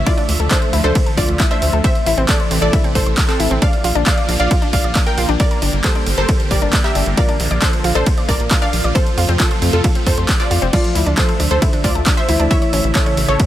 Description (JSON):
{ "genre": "uplifting trance", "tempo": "135 BPM", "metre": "4/4", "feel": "straight", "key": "D minor", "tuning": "A4 = 440 Hz", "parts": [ { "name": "supersaw pad", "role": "sustained chords", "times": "0.0-13.5 s", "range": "C3 to E5", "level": "-24 LUFS", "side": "right 1 dB", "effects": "phaser, sidechain pumping" }, { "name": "tight sequencer bass", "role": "bass", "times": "0.0-13.4 s", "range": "F1 to F2", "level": "-18 LUFS", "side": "equal", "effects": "sidechain pumping" }, { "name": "wide unison pluck", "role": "melody", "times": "0.1-13.5 s", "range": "C4 to G5", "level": "-21 LUFS", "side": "equal", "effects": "sidechain pumping, dub echo" }, { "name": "analog pluck", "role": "arpeggios", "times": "0.1-13.5 s", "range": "C4 to D5", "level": "-24 LUFS", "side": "left 2 dB", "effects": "chorus, sidechain pumping, dub echo" }, { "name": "electronic kick drum", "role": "drums", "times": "0.1-13.5 s", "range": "none", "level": "-16 LUFS", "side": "equal", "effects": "overdrive" }, { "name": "punchy analog drum machine", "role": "drums", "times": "0.1-13.5 s", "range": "crash cymbal, handclaps, hi-hat, ride cymbal", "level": "-22 LUFS", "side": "right 1 dB", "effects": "overdrive" }, { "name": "felt-muted upright piano", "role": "second line", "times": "10.7-13.5 s", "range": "E3 to F4", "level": "-23 LUFS", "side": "equal", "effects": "tape echo" } ], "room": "little or no reverb", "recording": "none", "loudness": "-13 LUFS", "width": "side -13 dB against mid", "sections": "0.0-13.5 A section", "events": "none", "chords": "0.1 Dmadd9; 1.8 Am; 3.6 Bb; 5.4 Gmadd9; 7.2 Bb; 9.0 F; 10.7 Dmadd9; 12.5 A", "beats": "| 0.06 0.51 0.95 1.40 | 1.84 2.29 2.73 3.17 | 3.62 4.06 4.51 4.95 | 5.40 5.84 6.29 6.73 | 7.17 7.62 8.06 8.51 | 8.95 9.40 9.84 10.29 | 10.73 11.18 11.62 12.06 | 12.51 12.95 13.40" }